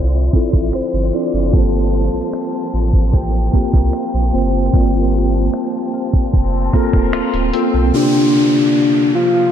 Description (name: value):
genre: contemporary R&B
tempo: 75 BPM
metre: 4/4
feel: straight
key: unclear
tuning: A4 = 440 Hz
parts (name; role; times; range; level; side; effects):
- mellow tine electric piano; accompaniment; 0.0-9.5 s; C3 to C5; -18 LUFS; equal; medium stereo tremolo
- warm studio string section; sustained chords; 0.0-7.9 s; F3 to C6; -30 LUFS; left 2 dB; none
- direct-recorded clean electric guitar; arpeggios; 0.0-8.5 s; D3 to Bb4; -28 LUFS; left 6 dB; ensemble chorus, tape echo
- saturated sub bass; bass; 0.0-7.9 s; D1 to C2; -18 LUFS; equal; none
- dusty soul sampler-style drum kit; drums; 0.1-7.7 s; finger snaps, hi-hat, kick drum; -15 LUFS; equal; none
- soft octave-layered synth lead; melody; 0.7-9.5 s; D4 to A5; -19 LUFS; left 2 dB; chorus, tape echo
- swell and downlifter; sound effects; 6.9-9.5 s; none; -25 LUFS; left 1 dB; none
room: light reverb, digital ambience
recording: low-pass filter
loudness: -13 LUFS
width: side -9 dB against mid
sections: 0.0-7.9 A section; 7.9-9.5 B section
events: filter sweep 0.0-7.9; swell 6.9-7.9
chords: 0.0 Dm9; 1.5 Gm11; 7.9 C9sus4